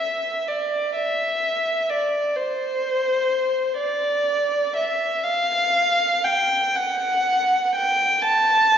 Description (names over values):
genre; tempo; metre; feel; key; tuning
classical, free, expressive piece for unaccompanied violin; 39-43 BPM (dotted quarters); 6/8; rubato; E minor; A4 = 440 Hz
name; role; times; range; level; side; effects
dark violin; solo; 0.0-8.8 s; C5 to A5; -19 LUFS; equal; none
room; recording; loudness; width
wet concert hall reverb, RT60 1.9 s; heard from further back in the room, nothing above 7.6 kHz; -19 LUFS; side -8 dB against mid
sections
0.0-8.8 A section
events
none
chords
none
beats
| 0.96 2.36 | 3.79 5.24 | 6.75 8.25